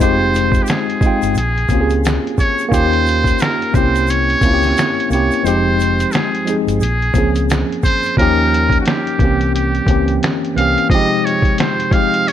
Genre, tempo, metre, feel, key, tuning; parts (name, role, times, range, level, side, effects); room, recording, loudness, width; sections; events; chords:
lo-fi hip hop; 88 BPM; 4/4; swing 60% on 16ths; F minor; A4 = 440 Hz
trumpet with metal mute; melody; 0.0-12.3 s; Gb4 to F5; -18 LUFS; right 1 dB; low-pass filter
mellow tine electric piano; accompaniment; 0.0-12.3 s; C3 to G5; -17 LUFS; left 2 dB; slow stereo tremolo, low-pass filter
vintage muted fingered electric bass; bass; 0.0-10.7 s; F1 to Eb2; -18 LUFS; equal
lo-fi sampler-style drum kit; drums; 0.0-12.3 s; finger snaps, hi-hat, kick drum, snare drum; -18 LUFS; equal
tube shaker; percussion; 0.0-8.2 s; -38 LUFS; right 8 dB
light reverb; cassette tape; -13 LUFS; side -10 dB against mid
0.0-12.3 A section
kick muted 5.4-6.8
0.0 Fm9; 1.4 Bbm9; 2.7 Eb7; 3.7 C7b9; 5.4 Fm9; 6.8 Bbm9; 8.2 Eb7; 9.2 C7b9; 10.9 Fm9